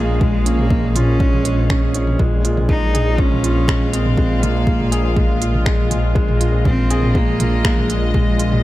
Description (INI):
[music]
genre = piano and strings electronica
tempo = 121 BPM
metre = 4/4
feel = straight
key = unclear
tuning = A4 = 438 Hz
[part]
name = dark cello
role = melody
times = 0.0-8.6 s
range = Ab3 to Eb4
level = -23 LUFS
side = equal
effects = none
[part]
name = dark studio string section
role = sustained chords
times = 0.0-8.6 s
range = Bb2 to F5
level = -28 LUFS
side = left 2 dB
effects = sidechain pumping
[part]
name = felt-muted upright piano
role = riff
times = 0.0-8.6 s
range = Ab3 to Ab4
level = -23 LUFS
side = right 1 dB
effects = none
[part]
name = dark detuned saw bass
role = bass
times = 0.0-8.6 s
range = Bb1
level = -19 LUFS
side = equal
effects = sidechain pumping
[part]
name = electronic kick drum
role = drums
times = 0.2-8.2 s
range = none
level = -19 LUFS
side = equal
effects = none
[part]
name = organic electronic drum kit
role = drums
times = 0.2-8.6 s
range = finger snaps, hi-hat, toms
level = -24 LUFS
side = right 1 dB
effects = none
[sound]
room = small room ambience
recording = none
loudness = -14 LUFS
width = side -16 dB against mid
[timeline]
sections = 0.0-8.6 A section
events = none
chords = 0.0 Bbm7; 2.2 Db/Bb (rootless)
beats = | 0.21 0.71 1.20 1.70 | 2.19 2.69 3.19 3.68 | 4.18 4.67 5.17 5.67 | 6.16 6.66 7.15 7.65 | 8.14